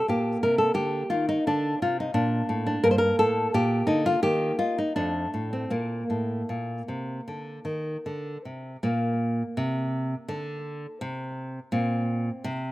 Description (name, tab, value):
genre	classical, baroque-style dance for nylon-string guitar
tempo	76-89 BPM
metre	4/4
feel	rubato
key	Bb major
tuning	A4 = 441 Hz
part	nylon-string guitar	solo	0.0-12.7 s	F2 to C5	-24 LUFS	equal	slapback echo
room	little or no reverb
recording	recorded outdoors, with no room sound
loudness	-24 LUFS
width	side -16 dB against mid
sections	0.0-8.8 A section; 8.8-12.7 B section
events	none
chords	0.1 Cm13; 2.8 Gmadd9; 4.2 Eb; 4.9 F; 5.7 Bb; 11.7 C5/Bb